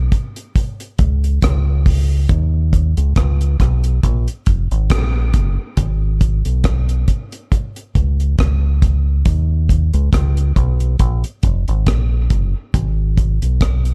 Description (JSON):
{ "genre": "dub reggae", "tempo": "69 BPM", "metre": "4/4", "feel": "swing 56% on 16ths", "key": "unclear", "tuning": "A4 = 442 Hz", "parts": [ { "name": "deep dub fingered electric bass", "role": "bass", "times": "0.0-13.9 s", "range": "F1 to D#2", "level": "-18 LUFS", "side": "equal", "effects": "none" }, { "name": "deep reggae drum kit", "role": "drums", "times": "0.1-13.9 s", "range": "hi-hat, kick drum, rim click", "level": "-20 LUFS", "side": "equal", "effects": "none" } ], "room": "little or no reverb", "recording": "dark, warm production", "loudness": "-17 LUFS", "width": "mono", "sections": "0.0-2.3 A section; 2.3-13.9 B section", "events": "none", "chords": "none" }